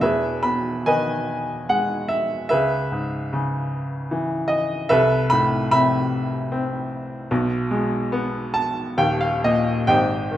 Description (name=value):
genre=classical, lyrical solo piano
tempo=66-77 BPM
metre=3/4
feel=rubato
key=E major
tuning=A4 = 436 Hz
part: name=clear upright piano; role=solo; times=0.0-10.4 s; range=D#1 to B5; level=-19 LUFS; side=equal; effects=none
room=moderate recital hall reverb, RT60 1.3 s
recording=minimal, uncompressed stereo recording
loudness=-19 LUFS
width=side -12 dB against mid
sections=0.0-9.9 A section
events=upright piano fill 8.1-9.9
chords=0.0 Emaj7; 2.5 C#m7; 4.9 Amadd9/C; 7.3 E/B; 9.0 D#5; 9.9 Ab